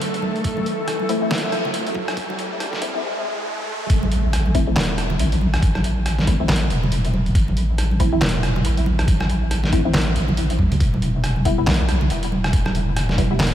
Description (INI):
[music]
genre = deep dubstep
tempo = 139 BPM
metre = 4/4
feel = swing 59% on 16ths, half-time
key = A minor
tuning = A4 = 442 Hz
[part]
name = deep soft wobble bass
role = bass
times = 0.0-13.5 s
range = E1 to D2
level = -20 LUFS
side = equal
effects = chorus, high-pass filter
[part]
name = trip hop sampler-style drum kit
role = drums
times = 0.0-13.5 s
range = handclaps, hi-hat, rim click, snare drum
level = -25 LUFS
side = equal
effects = none
[part]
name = riser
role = sound effects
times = 0.0-3.9 s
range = none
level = -30 LUFS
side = right 1 dB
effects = none
[part]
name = backwards swelling texture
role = texture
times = 0.0-3.0 s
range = A3 to A4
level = -28 LUFS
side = equal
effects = built-in reverb
[part]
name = congas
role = percussion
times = 0.2-13.5 s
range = none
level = -27 LUFS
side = right 1 dB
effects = dub echo
[part]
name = electronic kick drum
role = drums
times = 0.4-13.3 s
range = none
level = -20 LUFS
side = equal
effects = none
[part]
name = filtered dub chord stab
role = stabs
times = 1.1-13.4 s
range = G3 to E4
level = -28 LUFS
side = left 2 dB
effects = phaser, wide subtle chorus, dub echo
[sound]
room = light reverb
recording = high-pass filter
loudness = -18 LUFS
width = side -11 dB against mid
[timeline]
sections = 0.0-3.9 A section; 3.9-13.5 B section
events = build-up 0.0-3.9; riser 0.0-3.9; drop 3.9-13.5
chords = 0.0 A5; 3.9 Am; 10.8 Em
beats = 0.01 | 0.45 0.88 1.31 1.74 | 2.17 2.60 3.04 3.47 | 3.90 4.33 4.76 5.19 | 5.62 6.06 6.49 6.92 | 7.35 7.78 8.21 8.65 | 9.08 9.51 9.94 10.37 | 10.80 11.24 11.67 12.10 | 12.53 12.96 13.39